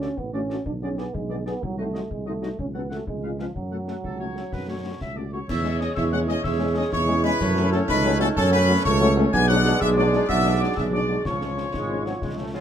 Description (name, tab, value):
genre	military-style march for wind band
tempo	125 BPM (dotted quarters)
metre	6/8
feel	straight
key	F# minor, C# minor from 5.5 s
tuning	A4 = 440 Hz
part	clear trumpet section	melody	0.0-12.6 s	G#4 to G#5	-29 LUFS	equal	none
part	clear woodwind section	second line	0.0-12.6 s	E#4 to F#5	-33 LUFS	left 2 dB	none
part	warm euphonium	second line	0.0-12.6 s	E#3 to G#4	-28 LUFS	right 3 dB	none
part	mellow French horn section	accompaniment	0.0-12.6 s	E#3 to G#4	-29 LUFS	left 5 dB	none
part	mellow tuba	bass	0.0-12.6 s	G#1 to F#2	-25 LUFS	right 2 dB	none
part	concert snare drum, concert bass drum and clash cymbals	drums	0.0-12.6 s	none	-34 LUFS	left 1 dB	none
part	mellow wooden piccolo	second line	5.3-12.6 s	A5 to G#6	-28 LUFS	left 2 dB	none
part	clear trombone section	sustained chords	5.5-12.6 s	E#3 to D4	-31 LUFS	left 1 dB	none
room	moderate studio reverb, RT60 0.6 s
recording	none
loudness	-21 LUFS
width	side -9 dB against mid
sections	0.0-5.5 A section; 5.5-12.6 B section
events	none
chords	0.0 D; 0.7 G#dim/B; 1.6 Cdim7; 2.6 F#m/C#; 3.1 C#7; 3.6 F#m; 5.5 C#m/E; 7.4 F#m; 9.3 G#m7b5/B; 11.3 C#